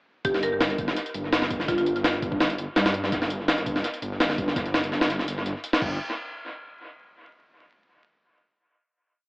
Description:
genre	drum and bass, jungle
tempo	167 BPM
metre	4/4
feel	straight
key	G minor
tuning	A4 = 440 Hz
part	marimba with hard mallets	melody	0.2-1.8 s	F4 to Bb4	-28 LUFS	equal	dub echo
part	detuned saw bass	bass	0.2-6.0 s	G1 to G2	-29 LUFS	equal	none
part	breakbeat sampler-style drum kit	drums	0.2-5.9 s	crash cymbal, hi-hat, kick drum, snare drum	-25 LUFS	equal	small room ambience, dub echo
room	moderate spring reverb, RT60 1.4 s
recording	echo-heavy mix, vinyl crackle, AM radio sound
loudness	-23 LUFS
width	side -39 dB against mid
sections	0.2-6.0 drop; 6.0-7.4 final hit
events	drop 0.2-6.0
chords	none

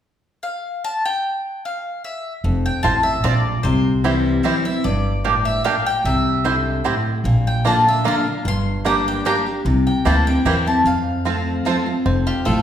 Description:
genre	bluegrass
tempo	150 BPM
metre	3/4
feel	straight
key	F major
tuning	A4 = 439 Hz
part	mandolin	melody	0.4-12.6 s	G4 to C6	-22 LUFS	left 1 dB	none
part	picked steel-string acoustic guitar	accompaniment	2.4-12.6 s	F2 to G4	-21 LUFS	left 2 dB	none
part	upright bass	bass	2.4-12.6 s	F1 to F2	-21 LUFS	equal	none
part	bluegrass banjo	melody	2.8-12.6 s	Bb3 to G4	-26 LUFS	right 3 dB	none
part	mandolin	stabs	2.8-11.8 s	Bb3 to Bb5	-24 LUFS	right 3 dB	none
room	wet recital hall reverb, RT60 1.3 s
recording	recorded in a church or concert hall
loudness	-17 LUFS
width	side -9 dB against mid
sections	0.0-2.4 A section; 2.4-12.1 B section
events	none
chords	0.0 N.C.; 2.4 F; 3.6 C; 4.8 Gm; 6.0 C; 7.2 Bb; 8.5 Gm; 9.7 C7; 10.9 F

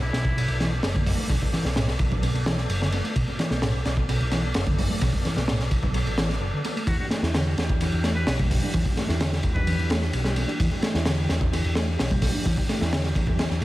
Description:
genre	breakbeat, breaks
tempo	129 BPM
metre	4/4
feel	straight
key	B minor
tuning	A4 = 440 Hz
part	trumpet with metal mute	melody	0.0-0.7, 6.9-9.9 s	E4 to B4	-36 LUFS	left 1 dB	telephone sound, dub echo
part	mellow tonewheel organ	sustained chords	0.0-13.6 s	E3 to D5	-34 LUFS	equal	chorus vibrato, fast rotary speaker, sidechain pumping
part	picked electric bass	bass	0.0-13.6 s	F#1 to E2	-26 LUFS	equal	none
part	crunchy breakbeat drum kit	drums	0.1-13.6 s	hi-hat, kick drum, ride cymbal, snare drum	-25 LUFS	equal	dub echo
part	mellow reed electric piano	riff	0.4-13.6 s	A2 to E4	-29 LUFS	equal	fast tremolo, tube saturation, vintage 12-bit sampler grit, low-pass filter, dub echo
part	congas	percussion	0.9-13.4 s	none	-36 LUFS	right 4 dB	none
part	reverse cymbal	sound effects	13.6 s	none	-44 LUFS	right 3 dB	none
room	light reverb, small room ambience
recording	echo-heavy mix, vinyl crackle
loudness	-22 LUFS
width	side -16 dB against mid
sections	0.0-13.6 A section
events	filter sweep on reed electric piano 0.0-13.6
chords	0.0 Bm7; 6.9 Em7

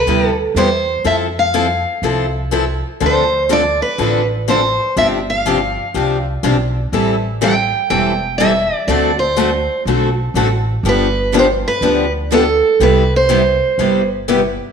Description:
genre	acoustic string swing (jazz manouche)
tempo	122 BPM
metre	4/4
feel	swing 64% on 8ths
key	C major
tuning	A4 = 440 Hz
part	picked steel-string acoustic guitar	melody	0.0-14.1 s	A4 to G5	-16 LUFS	right 2 dB	none
part	picked steel-string acoustic guitar	accompaniment	0.1-14.4 s	C3 to A4	-18 LUFS	left 8 dB	none
part	picked steel-string acoustic guitar	accompaniment	0.1-14.4 s	C3 to A4	-22 LUFS	right 9 dB	none
part	upright bass	bass	0.1-14.6 s	E1 to F2	-21 LUFS	right 1 dB	none
room	wet echo chamber reverb, RT60 1.4 s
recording	1960s-style stereo with parts hard left and right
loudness	-13 LUFS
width	side -6 dB against mid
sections	0.0-14.7 A section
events	none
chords	0.0 Cmaj9; 1.1 Fmaj7; 3.0 Dm7; 5.0 G7sus4; 6.9 Am7; 8.9 D7; 10.8 G9; 12.8 Cmaj7

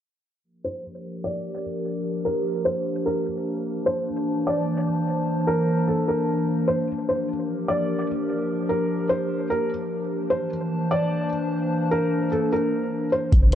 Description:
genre	hip hop, atmospheric cloud-rap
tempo	149 BPM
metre	4/4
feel	half-time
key	G dorian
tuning	A4 = 438 Hz
part	warbly tape-like pad	sustained chords	0.4-13.6 s	D3 to A5	-25 LUFS	equal	chorus, built-in reverb, sidechain pumping, low-pass filter
part	felt-muted upright piano	melody	0.6-13.3 s	A4 to D5	-26 LUFS	equal	low-pass filter, tape echo
part	warm 808-style bass	bass	13.3-13.6 s	G1	-17 LUFS	equal	none
part	booming analog drum machine	drums	13.3-13.6 s	hi-hat, kick drum	-17 LUFS	equal	none
room	light reverb, digital ambience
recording	worn, warbling old tape, cassette tape, warbly pitch drift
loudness	-22 LUFS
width	side -10 dB against mid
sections	0.4-13.3 A section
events	filter sweep 0.4-13.3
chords	0.4 Gm7; 3.7 C13; 6.9 Gm7; 10.1 C13

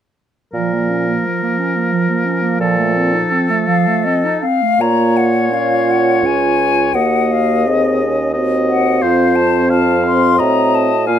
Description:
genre	classical, slow romantic movement for wind quintet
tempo	77-90 BPM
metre	3/4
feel	rubato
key	Bb minor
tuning	A4 = 439 Hz
part	clear oboe	second line	0.5-11.2 s	A4 to F5	-19 LUFS	left 2 dB	none
part	mellow French horn	accompaniment	0.5-11.2 s	F3 to Db4	-20 LUFS	left 1 dB	none
part	mellow clarinet	accompaniment	0.5-11.2 s	F3 to Ab4	-19 LUFS	right 6 dB	none
part	warm bassoon	bass	0.5-11.2 s	Db2 to Bb2	-18 LUFS	right 2 dB	none
part	bright silver concert flute	melody	3.7-11.2 s	Eb5 to C6	-17 LUFS	left 6 dB	none
room	moderate studio reverb, RT60 0.9 s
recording	none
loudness	-12 LUFS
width	side -9 dB against mid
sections	0.5-4.8 A section; 4.8-11.2 B section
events	none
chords	0.5 Bbm; 2.6 F7/Bb; 4.8 Bbm; 6.9 Ebm; 9.0 F7b9

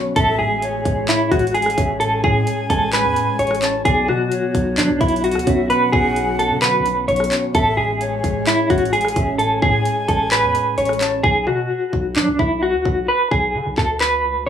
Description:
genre	hip hop, trap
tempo	130 BPM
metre	4/4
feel	half-time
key	B dorian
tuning	A4 = 439 Hz
part	clean electric guitar	melody	0.0-14.5 s	D4 to C#5	-18 LUFS	equal	tremolo, low-pass filter, plate reverb
part	soft electric-piano-like synth keys	accompaniment	0.0-11.3 s	A2 to C#4	-24 LUFS	equal	chorus, phaser, low-pass filter, plate reverb
part	airy breathy pad	sustained chords	0.0-11.2 s	A2 to F#4	-31 LUFS	left 1 dB	chorus, phaser
part	breathy concert flute	second line	0.2-11.2 s	C#5 to A5	-28 LUFS	left 2 dB	plate reverb, tape echo
part	distorted 808-style bass	bass	0.2-14.5 s	A1 to F#3	-26 LUFS	equal	distortion
part	trap drum kit	drums	0.2-14.1 s	handclaps, hi-hat, kick drum, rim click	-22 LUFS	equal	none
room	moderate studio ambience, RT60 0.5 s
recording	rough home demo mix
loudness	-15 LUFS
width	side -9 dB against mid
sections	0.0-11.2 A section; 11.2-14.5 B section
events	hi-hats muted 11.2-14.5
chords	0.2 Amaj7; 3.9 Bmadd9; 7.5 Amaj7; 11.2 Bm

